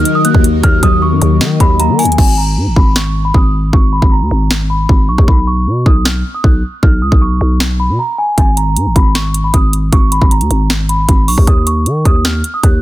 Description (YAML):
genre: hip hop, trap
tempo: 155 BPM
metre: 4/4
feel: half-time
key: G# dorian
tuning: A4 = 440 Hz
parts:
  - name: celesta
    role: melody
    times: 0.0-12.8 s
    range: G#5 to F#6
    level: -17 LUFS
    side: right 1 dB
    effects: low-pass filter, tape echo
  - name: warbly lo-fi synth keys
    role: accompaniment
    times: 0.0-2.2 s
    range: D#3 to D#5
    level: -15 LUFS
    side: left 7 dB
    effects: chorus
  - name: airy breathy pad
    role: sustained chords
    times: 0.0-2.2 s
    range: D#3 to A#4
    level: -20 LUFS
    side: equal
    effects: chorus
  - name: growling 808-style bass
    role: bass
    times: 0.0-12.8 s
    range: G#1 to D#3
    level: -14 LUFS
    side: equal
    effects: none
  - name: trap drum kit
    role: drums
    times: 0.1-12.7 s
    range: crash cymbal, hi-hat, kick drum, snare drum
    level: -11 LUFS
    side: equal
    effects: none
room: little or no reverb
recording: dense, heavily limited modern master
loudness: -9 LUFS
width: side -15 dB against mid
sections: 0.0-2.2 A section; 2.2-12.8 B section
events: hi-hats muted 2.2-8.4; filter sweep on celesta 2.2-12.8; silent gap 8.0-8.4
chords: 0.0 D#m; 2.2 G#m; 5.3 Bsus2; 8.4 G#m; 11.5 D#7sus2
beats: 0.25 | 0.64 1.02 1.41 1.80 | 2.18 2.57 2.96 3.35 | 3.73 4.12 4.51 4.89 | 5.28 5.67 6.05 6.44 | 6.83 7.22 7.60 7.99 | 8.38 8.76 9.15 9.54 | 9.93 10.31 10.70 11.09 | 11.47 11.86 12.25 12.63